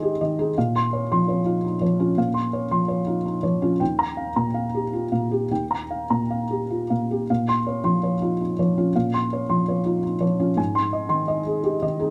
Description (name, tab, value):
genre	neoclassical minimalist piano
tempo	110 BPM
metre	3/4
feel	rubato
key	Bb dorian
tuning	A4 = 444 Hz
part	felt-muted upright piano	solo	0.0-12.1 s	Eb2 to C6	-23 LUFS	equal	none
room	light reverb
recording	close, detailed microphones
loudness	-23 LUFS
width	mono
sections	0.0-7.3 A section; 7.3-12.1 A section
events	none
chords	0.0 Ab; 0.6 Bbmadd9; 3.8 Ebadd9; 7.3 Bbmadd9; 10.6 Ab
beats	0.01 | 0.56 1.09 1.63 | 2.17 2.71 3.25 | 3.80 4.36 4.92 | 5.50 6.10 6.70 | 7.29 7.85 8.40 | 8.94 9.49 10.04 | 10.58 11.12 11.65